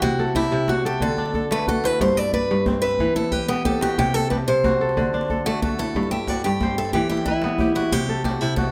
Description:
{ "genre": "west african traditional, West African string and xylophone music", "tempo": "122 BPM (dotted quarters)", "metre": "12/8", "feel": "straight", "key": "G major", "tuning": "A4 = 440 Hz", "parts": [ { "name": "picked acoustic archtop guitar", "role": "melody", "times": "0.0-8.7 s", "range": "E4 to D5", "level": "-25 LUFS", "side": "equal", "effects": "none" }, { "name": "kora", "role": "arpeggios", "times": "0.0-8.7 s", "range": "G2 to E5", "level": "-26 LUFS", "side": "equal", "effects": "none" }, { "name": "djembe", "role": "percussion", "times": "0.0-8.6 s", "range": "none", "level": "-29 LUFS", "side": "equal", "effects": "none" } ], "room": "light reverb", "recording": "close, detailed microphones", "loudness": "-22 LUFS", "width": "mono", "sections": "0.0-8.7 A section", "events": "none", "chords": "0.0 C; 1.0 D; 2.0 G; 3.0 Em; 4.0 C5; 5.0 D; 6.0 G5; 6.9 Em; 7.9 C5" }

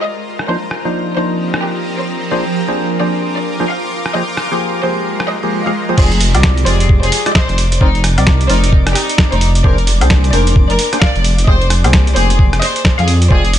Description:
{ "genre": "UK garage, two-step garage", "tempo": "131 BPM", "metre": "4/4", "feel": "swing 61% on 16ths", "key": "unclear", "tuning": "A4 = 441 Hz", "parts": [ { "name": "warm studio violin section", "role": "melody", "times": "0.0-13.5 s", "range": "Eb4 to F5", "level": "-20 LUFS", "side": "left 1 dB", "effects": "digital delay" }, { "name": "airy breathy pad", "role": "sustained chords", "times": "0.0-13.6 s", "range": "Bb4 to D6", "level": "-28 LUFS", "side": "left 1 dB", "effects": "chorus, sidechain pumping" }, { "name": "granular cloud pad", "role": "texture", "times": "0.0-6.0 s", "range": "F3 to Eb6", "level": "-21 LUFS", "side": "right 2 dB", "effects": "built-in reverb, tremolo, sidechain pumping" }, { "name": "boom bap sampler-style drum kit", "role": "drums", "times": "0.4-13.6 s", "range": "crash cymbal, hi-hat, rim click, snare drum, woodblock", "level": "-17 LUFS", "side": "equal", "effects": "low-pass filter on hats, low-pass filter on perc, low-pass filter on snare, low-pass filter on cymbals, low-pass filter on room" }, { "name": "percussive organ stab", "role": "stabs", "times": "0.5-13.4 s", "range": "F3 to D5", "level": "-20 LUFS", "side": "equal", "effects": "wide subtle chorus, digital delay" }, { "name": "dark detuned saw bass", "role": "bass", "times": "6.0-13.6 s", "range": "F1 to F2", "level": "-13 LUFS", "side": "equal", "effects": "sidechain pumping" }, { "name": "electronic kick drum", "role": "drums", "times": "6.0-13.4 s", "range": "none", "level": "-12 LUFS", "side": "equal", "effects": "none" } ], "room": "light reverb, digital ambience", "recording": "nothing above 10.4 kHz", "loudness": "-11 LUFS", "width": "side -11 dB against mid", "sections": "0.0-6.0 A section; 6.0-13.6 B section", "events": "drop 6.0-13.6", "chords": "0.3 Cm9/F; 2.3 Bb9/F; 4.1 Abmaj9/F; 6.0 Fm69; 7.6 Cm9/F; 9.6 Bb9/F; 11.5 Abmaj9/F" }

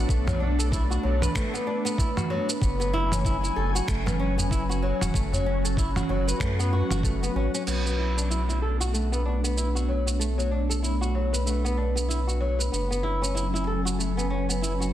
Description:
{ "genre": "organic downtempo", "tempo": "95 BPM", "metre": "4/4", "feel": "swing 58% on 16ths", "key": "B dorian", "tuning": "A4 = 438 Hz", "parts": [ { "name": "ethereal airy pad", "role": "sustained chords", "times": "0.0-14.9 s", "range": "F#3 to G#5", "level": "-31 LUFS", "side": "equal", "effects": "ensemble chorus, built-in reverb, sidechain pumping" }, { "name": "flamenco guitar", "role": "arpeggios", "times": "0.0-14.9 s", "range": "F#3 to B4", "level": "-30 LUFS", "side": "left 1 dB", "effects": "low-pass filter, digital delay" }, { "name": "warm sub bass", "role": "bass", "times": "0.0-14.9 s", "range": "E1 to F#2", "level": "-27 LUFS", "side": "equal", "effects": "none" }, { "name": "dusty soul sampler-style drum kit", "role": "drums", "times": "0.1-14.9 s", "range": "cabasa, crash cymbal, finger snaps, toms", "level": "-32 LUFS", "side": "right 2 dB", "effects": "soft clipping on snare" }, { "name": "electronic kick drum", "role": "drums", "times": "0.1-7.2 s", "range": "none", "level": "-27 LUFS", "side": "equal", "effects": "none" }, { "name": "udu", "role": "percussion", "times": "0.3-0.4, 4.4-5.4 s", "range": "none", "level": "-32 LUFS", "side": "equal", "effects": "none" } ], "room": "light reverb", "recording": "dense, heavily limited modern master", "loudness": "-23 LUFS", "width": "side -12 dB against mid", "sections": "0.0-7.7 A section; 7.7-14.9 B section", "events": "filter sweep on ambient pad 7.7-14.9", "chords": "0.0 Bm7; 2.6 F#m7; 7.7 Bm7; 12.7 F#m7" }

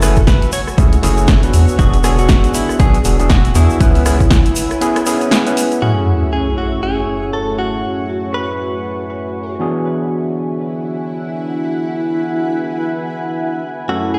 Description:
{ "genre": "deep house", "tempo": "119 BPM", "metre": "4/4", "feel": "swing 58% on 16ths", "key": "F# minor", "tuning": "A4 = 439 Hz", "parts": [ { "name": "direct-recorded clean electric guitar", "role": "melody", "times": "0.0-9.6, 13.9-14.2 s", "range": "E4 to C#5", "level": "-25 LUFS", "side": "equal", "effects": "tape echo" }, { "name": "dark analog pad", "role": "sustained chords", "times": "0.0-14.2 s", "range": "A3 to E6", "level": "-29 LUFS", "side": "equal", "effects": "chorus, sidechain pumping" }, { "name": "overdriven tine electric piano", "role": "stabs", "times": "0.0-14.2 s", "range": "F#2 to B4", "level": "-22 LUFS", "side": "equal", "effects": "sidechain pumping, low-pass filter" }, { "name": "rubbery square bass", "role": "bass", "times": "0.0-4.4 s", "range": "E1 to E2", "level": "-16 LUFS", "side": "equal", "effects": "sidechain pumping" }, { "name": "punchy analog drum machine", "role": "drums", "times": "0.0-5.8 s", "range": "hi-hat, rim click, snare drum", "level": "-22 LUFS", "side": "equal", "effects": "overdrive" }, { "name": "tube shaker", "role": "percussion", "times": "0.0-5.8 s", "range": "none", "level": "-31 LUFS", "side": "equal", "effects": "none" }, { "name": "granular cloud pad", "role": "texture", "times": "0.1-14.2 s", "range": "C#4 to G#5", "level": "-27 LUFS", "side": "equal", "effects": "built-in reverb, sidechain pumping" }, { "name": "electronic kick drum", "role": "drums", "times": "0.2-4.4 s", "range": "none", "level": "-15 LUFS", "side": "equal", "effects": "overdrive" }, { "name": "sub drop", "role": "sound effects", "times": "5.8-7.8 s", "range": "none", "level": "-22 LUFS", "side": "equal", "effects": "none" } ], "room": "moderate digital room reverb, RT60 1.1 s, digital ambience", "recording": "played on a big sound system in a bare room, large studio reverb", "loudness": "-16 LUFS", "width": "mono", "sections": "0.0-5.8 A section; 5.8-14.2 B section", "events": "break 4.8-5.8; impact 5.8-7.8; filter sweep on tine electric piano 5.8-14.2", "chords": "0.0 F#m9; 1.5 E9; 3.8 C#m7; 5.8 F#m9; 9.6 E9" }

